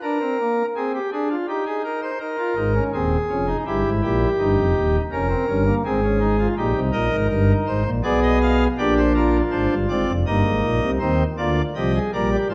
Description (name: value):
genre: classical, baroque-style 4-part fugue for pipe organ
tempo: 82 BPM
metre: 3/4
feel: straight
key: unclear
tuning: A4 = 442 Hz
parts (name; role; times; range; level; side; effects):
- pipe organ, cornet; solo; 0.0-12.5 s; Eb1 to F5; -21 LUFS; equal; none
room: wet recital hall reverb, RT60 1.6 s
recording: none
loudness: -21 LUFS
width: mono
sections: 0.0-11.0 A section; 11.0-12.5 B section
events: none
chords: 0.0 Bb7; 1.5 Eb; 2.2 Ab; 3.7 Gm6; 4.4 Eb7; 5.8 Ab; 6.6 Eb; 8.0 Ddim7/B; 8.8 Bb7; 10.3 Eb/G; 11.0 Cm7